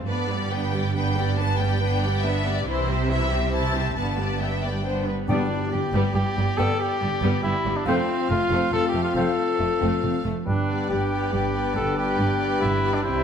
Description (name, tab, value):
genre	cinematic, heroic adventure film score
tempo	139 BPM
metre	3/4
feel	straight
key	G mixolydian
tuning	A4 = 439 Hz
part	warm symphonic cello section	bass	0.0-13.2 s	F2 to C3	-29 LUFS	right 3 dB	none
part	clear symphonic violin section	melody	0.1-13.2 s	C5 to A5	-33 LUFS	left 4 dB	none
part	warm symphonic violin section	second line	0.1-13.2 s	G3 to E5	-31 LUFS	left 3 dB	none
part	clear studio viola section	accompaniment	0.1-13.2 s	E3 to E4	-31 LUFS	equal	none
part	rich studio double bass section	bass	0.1-13.2 s	F1 to C2	-28 LUFS	right 2 dB	none
part	bright concert flute	second line	5.3-13.2 s	F5 to G5	-34 LUFS	left 3 dB	none
part	mellow oboe	second line	5.3-13.2 s	B4 to D5	-33 LUFS	right 1 dB	none
part	warm clarinet	second line	5.3-13.2 s	B3 to D4	-33 LUFS	equal	none
part	warm French horn section	sustained chords	5.3-13.2 s	B3 to G4	-28 LUFS	left 4 dB	none
part	clear trumpet	stabs	5.3-13.2 s	C4 to A4	-26 LUFS	equal	none
part	timpani	percussion	5.3-5.9 s	G2	-32 LUFS	left 2 dB	none
room	moderate scoring stage reverb, RT60 1.7 s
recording	none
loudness	-21 LUFS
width	side -7 dB against mid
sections	0.0-5.3 A section; 5.3-13.2 A section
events	none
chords	0.1 G; 2.7 C; 4.0 G; 7.9 F; 10.5 G